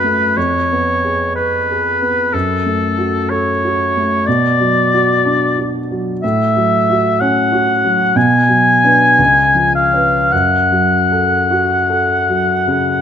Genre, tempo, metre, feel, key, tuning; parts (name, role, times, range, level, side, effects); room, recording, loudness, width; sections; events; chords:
classical, romantic duo for oboe and grand piano; 51-64 BPM; 4/4; rubato; F# minor; A4 = 440 Hz
warm oboe; melody; 0.0-13.0 s; A4 to G#5; -13 LUFS; left 1 dB
dark grand piano; accompaniment; 0.0-13.0 s; C#2 to B4; -16 LUFS; right 1 dB
moderate recital hall reverb, RT60 1.6 s; close, detailed microphones; -12 LUFS; side -8 dB against mid
0.0-13.0 A section
0.4 C#7/E#; 2.3 F#m; 4.3 Bm; 6.2 F#m/A; 8.2 G#m7b5/B; 9.2 C#7; 10.3 F#m